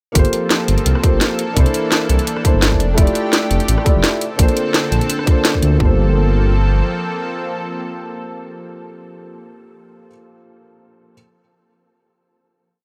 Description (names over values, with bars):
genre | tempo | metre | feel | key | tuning
liquid drum and bass | 170 BPM | 4/4 | swing 53% on 16ths | G dorian | A4 = 439 Hz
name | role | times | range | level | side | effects
felt-muted upright piano | accompaniment | 0.1-11.1 s | A3 to D5 | -24 LUFS | equal | tape echo
lush unison pad | sustained chords | 0.2-9.4 s | D3 to A4 | -27 LUFS | equal | chorus
dark detuned saw bass | bass | 0.2-6.8 s | F1 to D2 | -18 LUFS | equal | none
drum and bass drum kit | drums | 0.2-5.9 s | kick drum, toms | -16 LUFS | equal | none
drum and bass drum kit | drums | 0.2-5.7 s | hi-hat, rim click, snare drum | -21 LUFS | equal | none
room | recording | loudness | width
little or no reverb | none | -16 LUFS | mono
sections
0.2-5.8 drop; 5.8-8.6 final chord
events
drop 0.2-5.8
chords
0.2 Gm11; 1.4 C13; 2.8 Fmaj13; 4.2 Bbmaj9; 5.8 Gm11